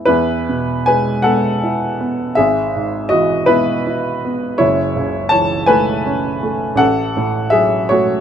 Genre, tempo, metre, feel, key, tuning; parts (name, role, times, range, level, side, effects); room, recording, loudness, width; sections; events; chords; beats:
classical, romantic nocturne for solo piano; 54 BPM (dotted quarters); 6/8; rubato; E major; A4 = 441 Hz
warm upright piano; solo; 0.0-8.2 s; F#1 to A5; -14 LUFS; equal
little or no reverb; close, detailed microphones; -14 LUFS; side -8 dB against mid
0.1-8.2 A section
0.1 E; 2.4 E/G#; 4.6 F#m7; 6.8 F#m/A
| 0.08 1.24 | 2.36 3.48 | 4.61 5.70 | 6.81 7.91